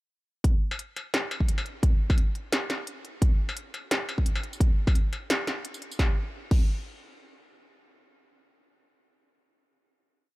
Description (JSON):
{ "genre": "drum and bass", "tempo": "173 BPM", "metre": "4/4", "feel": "swing 55% on 16ths, half-time", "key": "none", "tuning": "none", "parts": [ { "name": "electronic kick drum", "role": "drums", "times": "0.4-6.6 s", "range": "none", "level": "-23 LUFS", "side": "equal", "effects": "none" }, { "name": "industrial drum kit", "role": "drums", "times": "0.4-6.6 s", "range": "crash cymbal, hi-hat, snare drum, struck metal, tambourine", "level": "-30 LUFS", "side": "equal", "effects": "none" } ], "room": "little or no reverb", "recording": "dark, warm production", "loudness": "-25 LUFS", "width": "side -20 dB against mid", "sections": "0.4-6.0 drop; 6.0-7.4 final hit", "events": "drop 0.4-6.0", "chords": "none" }